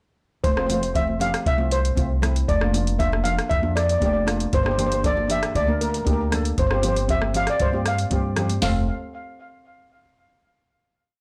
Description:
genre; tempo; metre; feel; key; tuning
calypso; 117 BPM; 4/4; straight; F major; A4 = 442 Hz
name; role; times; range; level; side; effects
steel pan; melody; 0.4-8.9 s; Bb4 to F5; -27 LUFS; equal; delay
upright bass; bass; 0.4-8.9 s; F1 to G2; -27 LUFS; equal; none
soft vintage rhythm box; drums; 0.4-8.7 s; hi-hat, kick drum, rim click, snare drum, toms; -28 LUFS; equal; soft clipping on snare
steel pan; accompaniment; 0.6-8.9 s; A3 to Bb4; -32 LUFS; equal; none
congas; percussion; 0.7-8.9 s; none; -35 LUFS; equal; none
room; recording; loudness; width
light reverb; blown-out, overdriven recording, overdrive; -22 LUFS; mono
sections
0.4-8.6 verse; 8.6-10.7 final chord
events
none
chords
0.4 Fmaj7; 2.5 Bb/F; 4.5 Gmadd9; 6.6 Csus4/G; 8.6 F

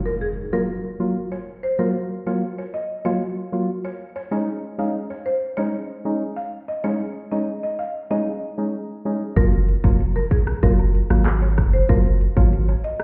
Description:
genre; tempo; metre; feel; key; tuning
dancehall; 95 BPM; 4/4; straight; unclear; A4 = 440 Hz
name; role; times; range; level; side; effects
impact; sound effects; 0.0-1.8 s; none; -37 LUFS; equal; none
buzzing marimba with medium hard mallets; melody; 0.1-12.9 s; Ab4 to F5; -30 LUFS; equal; delay
percussive organ stab; accompaniment; 0.5-12.5 s; Gb3 to F4; -27 LUFS; equal; chorus
punchy sub bass; bass; 9.4-12.8 s; F1 to Ab1; -21 LUFS; equal; none
island pop drum kit; drums; 9.4-13.0 s; handclaps, hi-hat, kick drum, rim click, shaker; -21 LUFS; equal; overdrive
woodblock and cabasa; percussion; 9.4-13.0 s; none; -48 LUFS; equal; none
room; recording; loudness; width
light reverb; heard muffled through a wall, stone room reverb, EQ; -22 LUFS; mono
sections
0.0-13.0 A section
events
impact 0.0-1.8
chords
0.0 Gbmaj7; 4.3 Dbsus2; 9.4 Gbmaj7

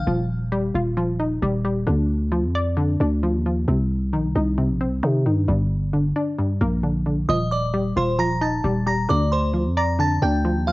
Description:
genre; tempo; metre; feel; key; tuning
hip hop, trap; 133 BPM; 4/4; half-time; unclear; A4 = 440 Hz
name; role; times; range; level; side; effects
delicate synth tine bell; melody; 0.0, 7.3-10.7 s; C5 to Bb6; -24 LUFS; right 1 dB; chorus, low-pass filter, cassette tape, tape echo
hollow square pluck; accompaniment; 0.0-10.7 s; G2 to D5; -23 LUFS; left 1 dB; chorus, low-pass filter, cassette tape
growling 808-style bass; bass; 0.0-10.7 s; Eb1 to C3; -22 LUFS; equal; none
room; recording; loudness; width
digital ambience; home recording on cassette, nothing above 7.6 kHz; -19 LUFS; side -20 dB against mid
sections
0.0-7.3 A section; 7.3-10.7 B section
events
break 0.1-7.3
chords
0.1 Ebadd9; 1.9 Dm; 3.7 Cm; 5.5 Gm; 7.3 Ebadd9; 9.1 Dm

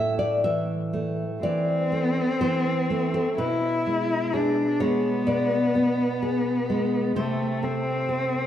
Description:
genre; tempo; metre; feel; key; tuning
romantic duo for cello and classical guitar; 59-66 BPM; 4/4; rubato; A minor; A4 = 440 Hz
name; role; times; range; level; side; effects
nylon-string guitar; accompaniment; 0.0-8.5 s; A2 to E5; -25 LUFS; equal; none
warm cello; melody; 1.4-8.5 s; A3 to E4; -24 LUFS; left 2 dB; analog delay
room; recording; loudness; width
wet lush hall reverb, RT60 1.5 s, small room reverb; dreamy mix soaked in reverb; -22 LUFS; side -10 dB against mid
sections
0.0-8.5 A section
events
none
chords
0.0 Am; 3.4 Bm69; 7.2 Am/C

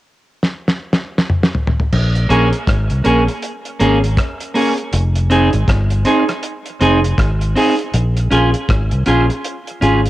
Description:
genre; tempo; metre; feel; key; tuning
roots reggae; 80 BPM; 4/4; swing 61% on 16ths; Bb dorian; A4 = 441 Hz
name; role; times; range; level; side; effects
damped 70s drum kit; drums; 0.4-10.1 s; crash cymbal, hi-hat, kick drum, rim click, snare drum, toms; -18 LUFS; equal; cassette tape, analog delay
fingered electric bass; bass; 1.9-10.1 s; F1 to C2; -15 LUFS; equal; none
clean electric guitar; accompaniment; 2.3-10.0 s; Bb3 to Ab4; -16 LUFS; right 1 dB; cassette tape, tape echo
room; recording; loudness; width
light reverb, studio reverb; home recording on cassette; -13 LUFS; side -15 dB against mid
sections
0.0-1.9 A section; 1.9-10.1 B section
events
drum fill 0.4-1.9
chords
0.0 N.C.; 1.9 Bbm7; 4.9 Fm7; 7.9 Bbm7

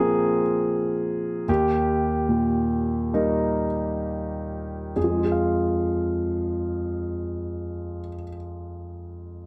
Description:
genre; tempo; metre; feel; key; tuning
classical; 62-82 BPM; 4/4; rubato; F minor; A4 = 440 Hz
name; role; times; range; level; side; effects
warm concert grand piano; accompaniment; 0.0-9.5 s; Eb2 to F5; -25 LUFS; equal; none
room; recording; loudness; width
moderate studio reverb, RT60 0.5 s; none; -25 LUFS; mono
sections
0.0-5.0 A section; 5.0-8.7 B section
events
slowing down 0.0-5.0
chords
0.0 Bbsus2; 1.5 Eb; 5.0 Fm

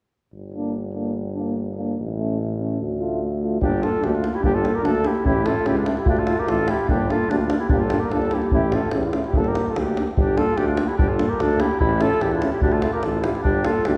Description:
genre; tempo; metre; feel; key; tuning
balkan folk, Balkan brass band; 146 BPM; 2/4; straight; G dorian sharp4; A4 = 439 Hz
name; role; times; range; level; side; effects
warm tuba; bass; 0.3-14.0 s; G1 to E2; -27 LUFS; equal; none
warm euphonium; accompaniment; 0.5-13.7 s; C#4 to F4; -31 LUFS; equal; none
warm euphonium; accompaniment; 0.5-13.7 s; A3 to Bb3; -31 LUFS; equal; none
dark cornet; melody; 3.6-14.0 s; F4 to Bb4; -27 LUFS; equal; none
clear clarinet; second line; 3.6-14.0 s; D4 to G4; -31 LUFS; equal; none
davul; percussion; 3.6-13.9 s; none; -27 LUFS; equal; none
room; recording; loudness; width
wet concert hall reverb, RT60 2.3 s; heard from further back in the room; -22 LUFS; mono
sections
0.3-3.6 A section; 3.6-10.2 B section; 10.2-14.0 B section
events
none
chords
0.3 Gm; 2.0 A; 2.8 Dm; 3.6 Gm; 5.3 A; 6.1 Dm; 6.9 Gm; 8.5 A; 9.3 Gm; 11.8 A; 12.6 Dm; 13.4 Gm

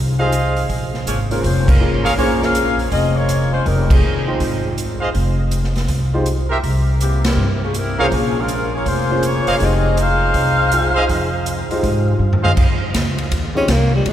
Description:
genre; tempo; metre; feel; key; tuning
jazz, big band swing; 162 BPM; 4/4; swing 65% on 8ths; F minor; A4 = 441 Hz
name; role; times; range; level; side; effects
upright bass; bass; 0.0-14.1 s; F1 to Ab2; -18 LUFS; equal; none
clear concert grand piano; accompaniment; 0.2-13.7 s; Ab3 to G5; -25 LUFS; right 1 dB; none
warm trumpet section; stabs; 0.2-2.1, 5.0-12.5 s; G4 to F5; -25 LUFS; right 2 dB; none
swinging big-band drum kit; drums; 0.3-14.1 s; crash cymbal, hi-hat, kick drum, ride cymbal, snare drum, toms; -21 LUFS; equal; none
warm saxophone section; melody; 1.1-4.6, 7.0-11.5 s; E3 to F5; -21 LUFS; left 1 dB; none
clear tenor saxophone; melody; 13.6-14.1 s; G3 to Db4; -18 LUFS; left 1 dB; none
room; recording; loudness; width
wet cathedral reverb, RT60 6.0 s; recorded in a church or concert hall; -15 LUFS; side -11 dB against mid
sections
0.0-12.6 A section; 12.6-14.1 B section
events
band accent 1.6, 3.8, 7.2; drum fill 12.2-12.6; tenor saxophone solo 12.6-14.1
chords
0.0 Fm7; 0.7 Bbm7; 3.7 Fm7; 6.6 C7; 8.1 Bbm7; 9.6 Fm7; 12.6 F7(no3)

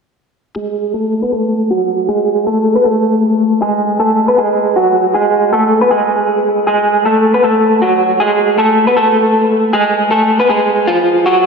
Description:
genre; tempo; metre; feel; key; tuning
hip hop; 157 BPM; 4/4; half-time; F# minor; A4 = 440 Hz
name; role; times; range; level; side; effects
electric guitar through a small old amp; melody; 0.6-11.5 s; F3 to B4; -10 LUFS; equal; tremolo, low-pass filter
room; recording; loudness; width
wet lush hall reverb, RT60 3.4 s; dreamy mix soaked in reverb; -10 LUFS; side -5 dB against mid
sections
0.6-11.5 A section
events
filter sweep on clean electric guitar 0.6-11.5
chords
0.6 F#madd9; 9.7 Fm

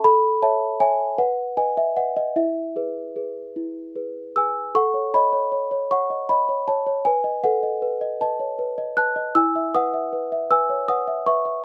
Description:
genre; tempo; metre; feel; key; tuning
classical, lullaby for celesta; 52 BPM (dotted quarters); 6/8; straight; E major; A4 = 439 Hz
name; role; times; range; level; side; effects
small celesta; solo; 0.0-11.6 s; E4 to F#6; -22 LUFS; equal; none
room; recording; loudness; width
light reverb; close, detailed microphones; -22 LUFS; mono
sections
0.0-4.8 A section; 4.8-11.6 B section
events
none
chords
0.0 A; 1.2 B; 2.4 E; 4.8 F#m/A; 7.1 B7; 9.4 E

